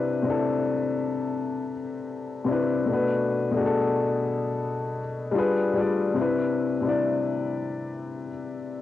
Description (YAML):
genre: hip hop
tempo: 73 BPM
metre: 4/4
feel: swing 61% on 16ths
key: unclear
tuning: A4 = 441 Hz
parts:
  - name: dark upright piano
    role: solo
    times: 0.0-8.8 s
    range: B2 to D5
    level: -24 LUFS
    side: left 3 dB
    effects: cassette tape, low-pass filter
room: light reverb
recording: home recording on cassette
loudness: -24 LUFS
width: side -13 dB against mid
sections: 0.0-8.8 A section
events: none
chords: 0.0 Cmaj9; 2.9 Bm7; 5.3 G7b9; 6.2 Cmaj9